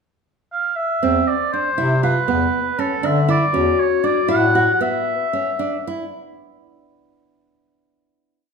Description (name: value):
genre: contemporary instrumental, chamber music in an uneven meter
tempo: 238 BPM (eighths)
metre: 5/8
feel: straight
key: unclear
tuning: A4 = 440 Hz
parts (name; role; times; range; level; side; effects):
- warm oboe; melody; 0.5-5.8 s; A4 to F#5; -20 LUFS; right 1 dB; none
- nylon-string guitar; arpeggios; 1.0-6.0 s; B3 to F#4; -22 LUFS; right 5 dB; none
- clear bass clarinet; bass; 1.0-4.7 s; E2 to D3; -22 LUFS; left 2 dB; none
- vibraphone with soft mallets; second line; 3.5-4.8 s; F#4; -20 LUFS; left 9 dB; none
room: wet recital hall reverb, RT60 1.4 s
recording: minimal, uncompressed stereo recording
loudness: -16 LUFS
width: side -5 dB against mid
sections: 0.0-1.0 pickup bar; 1.0-6.1 A section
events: slowing down 3.5-6.1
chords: 0.0 N.C.; 1.0 F5/E; 2.3 E7sus4; 3.5 Dmaj7/E; 4.8 E5